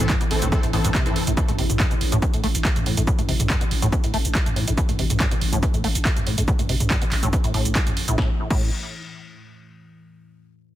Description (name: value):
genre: driving peak-time techno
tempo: 141 BPM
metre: 4/4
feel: straight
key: A minor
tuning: A4 = 440 Hz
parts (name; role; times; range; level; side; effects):
- rave stab; stabs; 0.0-1.2 s; E3 to A4; -27 LUFS; equal; chorus, built-in reverb, cassette tape, sidechain pumping, digital delay
- growling 808-style bass; bass; 0.0-8.7 s; A1; -27 LUFS; equal; tube saturation, sidechain pumping, low-pass filter
- deep dark ambient pad; drone; 0.0-8.2 s; A2 to E3; -32 LUFS; left 2 dB; chorus, built-in reverb, sidechain pumping
- acid bass, saw; riff; 0.1-8.7 s; A1 to C4; -27 LUFS; equal; analog chorus, sidechain pumping, digital delay
- electronic kick drum; drums; 0.1-8.6 s; none; -22 LUFS; equal; overdrive
- punchy analog drum machine; drums; 0.1-8.6 s; crash cymbal, handclaps, hi-hat, shaker, snare drum, toms; -25 LUFS; right 1 dB; overdrive, sidechain pumping on hats, sidechain pumping on perc, sidechain pumping on toms, sidechain pumping on cymbals
room: digital ambience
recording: dense, heavily limited modern master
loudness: -19 LUFS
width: side -13 dB against mid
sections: 0.0-8.2 A section; 8.2-9.9 B section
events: none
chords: 0.0 Am; 8.2 N.C.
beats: 0.10 0.52 0.95 | 1.37 1.80 2.22 2.65 | 3.07 3.50 3.92 4.35 | 4.78 5.20 5.63 6.05 | 6.48 6.90 7.33 7.75 | 8.18 8.61